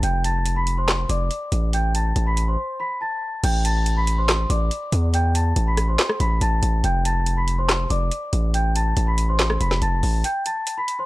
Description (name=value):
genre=hip hop, trap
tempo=141 BPM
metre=4/4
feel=half-time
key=A minor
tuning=A4 = 441 Hz
part: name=large celesta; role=melody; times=0.0-11.1 s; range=C5 to B6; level=-25 LUFS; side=left 1 dB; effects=none
part: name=distorted 808-style bass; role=bass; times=0.0-10.2 s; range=F1 to E2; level=-20 LUFS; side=equal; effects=distortion
part: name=trap drum kit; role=drums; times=0.0-11.0 s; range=crash cymbal, handclaps, hi-hat, rim click, snare drum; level=-25 LUFS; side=equal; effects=none
room=digital ambience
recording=dry, gritty hardware recording, transformer saturation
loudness=-19 LUFS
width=side -18 dB against mid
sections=0.0-3.4 A section; 3.4-11.1 B section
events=break 2.6-3.4, 10.2-10.7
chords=0.0 F6; 3.4 Am; 6.8 F6; 10.2 A7(no3)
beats=| 0.03 0.46 0.88 1.31 | 1.73 2.16 2.58 3.01 | 3.44 3.86 4.29 4.71 | 5.14 5.56 5.99 6.41 | 6.84 7.26 7.69 8.12 | 8.54 8.97 9.39 9.82 | 10.24 10.67